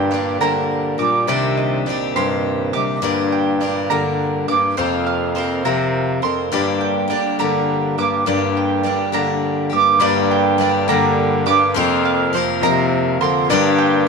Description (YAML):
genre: folk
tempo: 69 BPM (dotted quarters)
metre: 6/8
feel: straight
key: G minor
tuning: A4 = 440 Hz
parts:
  - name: clear concert grand piano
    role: accompaniment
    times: 0.0-14.1 s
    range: F1 to Eb5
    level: -25 LUFS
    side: left 13 dB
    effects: none
  - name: picked steel-string acoustic guitar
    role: accompaniment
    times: 0.0-14.1 s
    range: G2 to Bb4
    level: -22 LUFS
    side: left 11 dB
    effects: none
  - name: pedal harmonium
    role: sustained chords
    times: 0.0-14.1 s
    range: Bb2 to G4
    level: -26 LUFS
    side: right 12 dB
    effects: none
  - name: mandolin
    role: arpeggios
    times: 0.0-14.1 s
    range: C5 to D6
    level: -20 LUFS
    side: right 9 dB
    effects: none
  - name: warm bass clarinet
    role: bass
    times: 0.0-14.1 s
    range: F2 to D3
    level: -21 LUFS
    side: equal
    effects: none
room: light reverb, studio ambience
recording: 1960s-style stereo with parts hard left and right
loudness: -15 LUFS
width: side -4 dB against mid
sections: 0.0-10.0 A section; 10.0-14.1 A section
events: none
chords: 0.0 Gm; 1.3 Cmadd9; 3.0 Gm; 4.8 Fsus4; 6.5 Gm; 11.8 Fsus4; 13.5 Gm